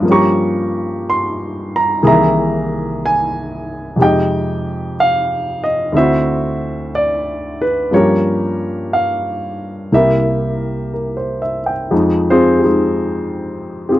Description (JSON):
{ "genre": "jazz ballad", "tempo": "60 BPM", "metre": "4/4", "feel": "swing 69% on 8ths", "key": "F minor", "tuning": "A4 = 440 Hz", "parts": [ { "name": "warm baby grand piano", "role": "solo", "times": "0.0-14.0 s", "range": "C2 to Db6", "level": "-14 LUFS", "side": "equal", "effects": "none" } ], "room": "light reverb", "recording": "dry, close 1970s-style studio recording", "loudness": "-14 LUFS", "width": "side -14 dB against mid", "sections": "0.0-11.9 A section; 11.9-14.0 B section", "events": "none", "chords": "0.0 Gm7b5; 2.0 C7alt; 4.0 Fm7; 5.9 D7; 7.9 Gm7b5; 9.9 C7; 11.9 Fm7", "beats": "| 0.03 1.02 2.00 2.98 | 3.96 4.94 5.93 6.92 | 7.92 8.91 9.90 10.91 | 11.91 12.91 13.90" }